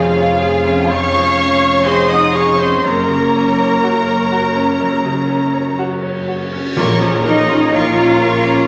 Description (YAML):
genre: cinematic, emotional film score for orchestra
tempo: 62 BPM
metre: 4/4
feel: rubato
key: Bb minor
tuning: A4 = 436 Hz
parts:
  - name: rich studio violin section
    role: melody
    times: 0.0-8.7 s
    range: F5 to Eb6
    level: -24 LUFS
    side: equal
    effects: none
  - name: mellow hollow flute section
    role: second line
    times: 0.0-8.7 s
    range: F5 to Eb6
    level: -22 LUFS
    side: equal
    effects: none
  - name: rich studio violin section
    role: second line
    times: 0.0-8.7 s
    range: Ab4 to Gb5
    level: -26 LUFS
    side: equal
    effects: none
  - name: bright concert grand piano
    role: accompaniment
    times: 0.0-8.7 s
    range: F2 to Db5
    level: -21 LUFS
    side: equal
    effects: none
  - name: rich studio viola section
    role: accompaniment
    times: 0.0-8.7 s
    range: Bb3 to Eb5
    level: -23 LUFS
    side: equal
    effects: none
  - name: mellow French horn section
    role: sustained chords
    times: 0.0-8.7 s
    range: F3 to Eb4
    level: -25 LUFS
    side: equal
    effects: none
  - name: rich studio cello section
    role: bass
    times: 0.0-8.7 s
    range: F2 to F4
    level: -22 LUFS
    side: equal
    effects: none
  - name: rich studio double bass section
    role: bass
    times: 0.0-8.6 s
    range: F1 to Bb1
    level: -27 LUFS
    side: equal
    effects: none
  - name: cymbal swell and tam-tam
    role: percussion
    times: 2.8-8.7 s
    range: none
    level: -28 LUFS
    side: equal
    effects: none
  - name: mellow clarinet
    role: second line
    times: 6.8-8.7 s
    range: Db5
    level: -28 LUFS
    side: equal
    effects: none
  - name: timpani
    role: percussion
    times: 6.8-8.2 s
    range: Bb2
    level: -28 LUFS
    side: equal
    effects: none
room: wet scoring stage reverb, RT60 1.6 s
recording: none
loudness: -14 LUFS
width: mono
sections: 0.0-6.8 A section; 6.8-8.7 B section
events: band accent 6.8-7.7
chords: 0.0 Db/F; 2.8 Gb; 6.8 Bbm